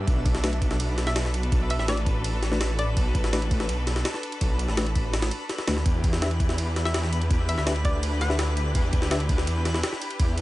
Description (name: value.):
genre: drum and bass, jungle.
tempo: 166 BPM.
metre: 4/4.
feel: straight.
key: B minor.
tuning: A4 = 440 Hz.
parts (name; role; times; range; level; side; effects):
rich studio string section; sustained chords; 0.0-10.4 s; D4 to B4; -34 LUFS; left 1 dB; none.
detuned saw bass; bass; 0.0-10.4 s; A1 to E2; -26 LUFS; equal; none.
twinkling granular texture; texture; 0.0-10.4 s; B5; -38 LUFS; left 2 dB; built-in reverb.
jungle sampler-style drum kit; drums; 0.1-10.4 s; kick drum, ride cymbal, snare drum; -26 LUFS; equal; none.
mellow tine electric piano; stabs; 0.4-9.2 s; A3 to E5; -33 LUFS; left 2 dB; dub echo.
hollow square pluck; melody; 1.1-3.3, 6.9-8.7 s; D5 to F#5; -34 LUFS; left 1 dB; chorus, vintage 12-bit sampler grit, dub echo.
room: little or no reverb.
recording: nothing above 10.7 kHz.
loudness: -23 LUFS.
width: side -17 dB against mid.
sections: 0.0-10.4 A section.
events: none.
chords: 0.1 Bm7; 5.9 Em7.